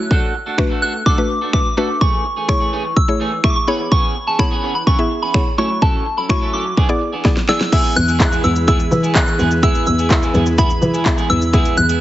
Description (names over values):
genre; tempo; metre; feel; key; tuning
dance-pop; 126 BPM; 4/4; straight; unclear; A4 = 440 Hz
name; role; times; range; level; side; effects
soft synth bell; melody; 0.0-12.0 s; A5 to F#6; -20 LUFS; equal; chorus, phaser, digital delay
mallet-like synth pluck; accompaniment; 0.0-11.8 s; A3 to E5; -22 LUFS; left 1 dB; chorus, sidechain pumping
clean electric guitar; riff; 0.0-12.0 s; E3 to A4; -25 LUFS; right 3 dB; lush chorus
pop drum kit; drums; 0.1-12.0 s; crash cymbal, finger snaps, handclaps, hi-hat, kick drum, shaker, snare drum; -16 LUFS; equal; none
airy breathy pad; sustained chords; 7.7-12.0 s; E3 to B4; -25 LUFS; equal; chorus, sidechain pumping
dark double bass; bass; 8.0-12.0 s; E2 to E3; -18 LUFS; equal; sidechain pumping
room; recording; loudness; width
light reverb, digital ambience; heavily compressed radio sound, multiband compression, nothing above 7.9 kHz; -14 LUFS; side -14 dB against mid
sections
0.0-7.7 A section; 7.7-12.0 B section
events
drum fill 7.2-7.7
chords
0.1 Bm7; 2.0 Amaj7; 3.7 C#m7; 5.6 F#m7; 6.8 E7; 7.7 E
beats
| 0.11 0.58 1.06 1.54 | 2.01 2.49 2.96 3.44 | 3.92 4.39 4.87 5.34 | 5.82 6.30 6.77 7.25 | 7.73 8.20 8.68 9.15 | 9.63 10.11 10.58 11.06 | 11.54